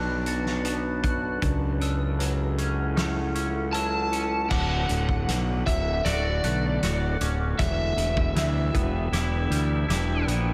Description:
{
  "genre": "post-rock",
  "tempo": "78 BPM",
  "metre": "4/4",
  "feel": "straight",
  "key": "D major",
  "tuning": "A4 = 440 Hz",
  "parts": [
    { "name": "deep dark ambient pad", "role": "sustained chords", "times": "0.0-10.5 s", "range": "D3 to A5", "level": "-36 LUFS", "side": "equal", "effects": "chorus, built-in reverb" },
    { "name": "glockenspiel with hard plastic mallets", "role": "arpeggios", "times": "0.0-10.5 s", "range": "D6 to A6", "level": "-40 LUFS", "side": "equal", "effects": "analog delay" },
    { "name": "twangy electric guitar", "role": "arpeggios", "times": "0.0-10.5 s", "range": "D2 to F#4", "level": "-35 LUFS", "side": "equal", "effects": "analog chorus, analog delay" },
    { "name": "fuzz fingered electric bass", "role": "bass", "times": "0.0-10.5 s", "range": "D1 to D2", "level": "-29 LUFS", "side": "equal", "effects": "overdrive" },
    { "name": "loose indie drum kit", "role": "drums", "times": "0.3-10.5 s", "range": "crash cymbal, hi-hat, kick drum, snare drum", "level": "-32 LUFS", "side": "equal", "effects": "none" },
    { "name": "overdriven slide guitar", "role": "melody", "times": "3.7-10.2 s", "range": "D5 to A5", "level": "-32 LUFS", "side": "equal", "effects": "subtle chorus, analog delay" }
  ],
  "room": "moderate lush hall reverb, RT60 2.5 s",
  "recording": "dreamy mix soaked in reverb",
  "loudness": "-26 LUFS",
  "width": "mono",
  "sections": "0.0-4.5 A section; 4.5-10.5 B section",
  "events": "build-up 4.5-10.5; drum fill 4.5-10.5",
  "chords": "0.0 Bm7; 1.4 F#m7/C#; 4.5 Dmaj7; 7.6 Em7"
}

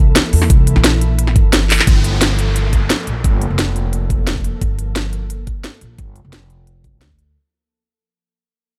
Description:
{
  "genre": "liquid drum and bass",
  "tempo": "175 BPM",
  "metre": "4/4",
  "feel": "straight",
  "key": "G dorian",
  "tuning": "A4 = 442 Hz",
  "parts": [
    { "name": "glassy FM pad", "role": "sustained chords", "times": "0.0-7.3 s", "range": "E3 to A4", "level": "-28 LUFS", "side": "equal", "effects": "ensemble chorus, built-in reverb" },
    { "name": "upright bass", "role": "bass", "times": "0.0-7.3 s", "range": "F1 to E2", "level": "-19 LUFS", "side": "equal", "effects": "none" },
    { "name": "drum and bass drum kit", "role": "drums", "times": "0.2-7.3 s", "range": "handclaps, hi-hat, snare drum", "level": "-19 LUFS", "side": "equal", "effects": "none" },
    { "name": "electronic kick drum", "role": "drums", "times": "0.5-7.2 s", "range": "none", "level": "-16 LUFS", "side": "equal", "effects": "none" },
    { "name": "downlifter", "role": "sound effects", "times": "1.9-4.6 s", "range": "none", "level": "-30 LUFS", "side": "equal", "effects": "none" }
  ],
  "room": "little or no reverb",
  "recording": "none",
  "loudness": "-15 LUFS",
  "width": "mono",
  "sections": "0.0-1.9 A section; 1.9-7.4 B section",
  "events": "drop 0.0-1.9; kick drops out 1.5-1.9; drum fill 1.7; fade-out 1.9-7.4; filter sweep on ambient pad 1.9-7.4",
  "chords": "0.0 C13; 1.9 Gm9"
}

